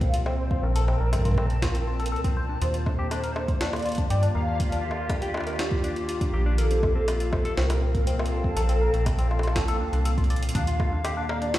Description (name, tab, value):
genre	IDM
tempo	121 BPM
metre	4/4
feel	straight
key	Eb lydian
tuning	A4 = 440 Hz
part	warbly nostalgic lead	melody	0.0-11.6 s	A4 to F5	-32 LUFS	equal	ensemble chorus, cassette tape, digital delay
part	warbly tape-like pad	sustained chords	0.0-11.6 s	Bb2 to A5	-32 LUFS	equal	chorus, built-in reverb, phaser
part	barky tine electric piano	arpeggios	0.0-11.5 s	C4 to D5	-33 LUFS	left 3 dB	phaser, digital delay
part	metallic FM bass	bass	0.0-11.6 s	Bb1 to G2	-26 LUFS	equal	none
part	electronic kick drum	drums	0.0-10.9 s	none	-27 LUFS	equal	small room reverb
part	jungle sampler-style drum kit	drums	0.0-11.6 s	bongos, hi-hat, snare drum	-34 LUFS	left 1 dB	overdrive, small room reverb, digital delay
room	light reverb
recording	played on a big sound system in a bare room, stone room reverb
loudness	-23 LUFS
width	side -14 dB against mid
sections	0.0-10.6 A section; 10.6-11.6 B section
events	drum fill 10.3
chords	0.0 Bbmaj9; 2.6 Ebmaj9; 6.6 Bbmaj7sus2; 10.6 Ebmaj9